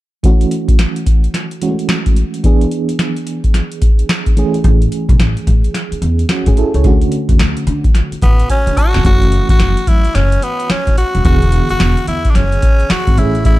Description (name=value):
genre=R&B, new jack swing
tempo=109 BPM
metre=4/4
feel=swing 63% on 16ths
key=F# minor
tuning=A4 = 439 Hz
part: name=FM electric piano with tremolo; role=accompaniment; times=0.2-13.6 s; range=D3 to A5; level=-19 LUFS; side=right 2 dB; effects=none
part: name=booming analog drum machine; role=drums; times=0.2-13.6 s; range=hi-hat, kick drum, snare drum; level=-12 LUFS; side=equal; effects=none
part: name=upright bass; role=bass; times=4.6-13.6 s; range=D#1 to D3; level=-15 LUFS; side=equal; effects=none
part: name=raspy tenor saxophone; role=melody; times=8.2-13.6 s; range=B3 to F#4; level=-18 LUFS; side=left 1 dB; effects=none
room=digital ambience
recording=dark, warm production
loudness=-11 LUFS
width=side -17 dB against mid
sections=0.2-9.0 A section; 9.0-13.6 B section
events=FM electric piano fill 8.2-9.0; drum fill 8.5-9.0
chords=0.2 F#m7; 2.4 E7; 4.4 Amaj7; 6.8 Dmaj7; 9.0 F#m7; 11.2 E7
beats=| 0.24 0.79 1.34 1.89 | 2.44 2.99 3.54 4.09 | 4.64 5.19 5.74 6.29 | 6.84 7.39 7.95 8.50 | 9.05 9.60 10.15 10.70 | 11.25 11.80 12.35 12.90 | 13.45